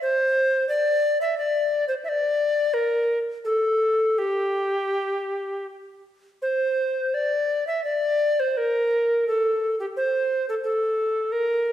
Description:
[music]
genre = classical, baroque-style fantasia for unaccompanied recorder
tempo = 76-90 BPM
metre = 3/4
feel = rubato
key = unclear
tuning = A4 = 439 Hz
[part]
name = bright tenor recorder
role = solo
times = 0.0-11.7 s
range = G4 to E5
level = -21 LUFS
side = equal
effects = none
[sound]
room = wet recital hall reverb, RT60 1.5 s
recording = heard from further back in the room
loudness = -21 LUFS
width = side -11 dB against mid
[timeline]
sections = 0.0-6.4 A section; 6.4-11.7 B section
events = none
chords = none

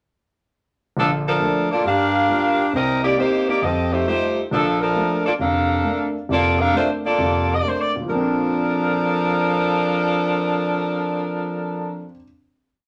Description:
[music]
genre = jazz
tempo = 135 BPM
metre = 4/4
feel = swing 65% on 8ths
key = Bb major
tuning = A4 = 439 Hz
[part]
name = warm saxophone section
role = melody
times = 1.0-12.1 s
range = F3 to F5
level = -21 LUFS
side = equal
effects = none
[part]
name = warm concert grand piano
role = accompaniment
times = 1.0-12.2 s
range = F1 to F4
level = -27 LUFS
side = equal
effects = none
[sound]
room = wet studio reverb, RT60 0.6 s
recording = none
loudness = -20 LUFS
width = mono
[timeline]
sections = 1.0-8.1 A section; 8.1-11.6 final chord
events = none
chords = 1.0 Bbmaj7; 1.8 Gm7; 2.7 Cm7; 3.6 F9; 4.5 Bbmaj7

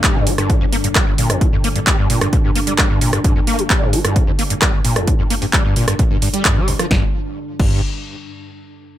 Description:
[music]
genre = driving peak-time techno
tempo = 131 BPM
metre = 4/4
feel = straight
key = G minor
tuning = A4 = 440 Hz
[part]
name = screaming distorted acid line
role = riff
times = 0.0-7.8 s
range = G1 to Bb3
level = -20 LUFS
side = equal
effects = distortion, ensemble chorus, sidechain pumping, digital delay
[part]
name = metallic inharmonic drone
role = drone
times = 0.0-7.0 s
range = G2 to D3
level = -27 LUFS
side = equal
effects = chorus, built-in reverb, sidechain pumping
[part]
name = electronic kick drum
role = drums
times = 0.0-7.7 s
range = none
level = -17 LUFS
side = equal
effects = none
[part]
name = techno drum kit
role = drums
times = 0.0-7.7 s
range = crash cymbal, handclaps, hi-hat, rim click, snare drum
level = -19 LUFS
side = right 1 dB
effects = none
[part]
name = tight sequencer bass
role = bass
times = 6.9-7.8 s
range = G1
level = -26 LUFS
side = equal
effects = none
[sound]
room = light reverb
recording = none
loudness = -14 LUFS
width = side -12 dB against mid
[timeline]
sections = 0.0-6.9 A section; 6.9-8.7 B section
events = none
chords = 0.0 Gm; 6.9 N.C.

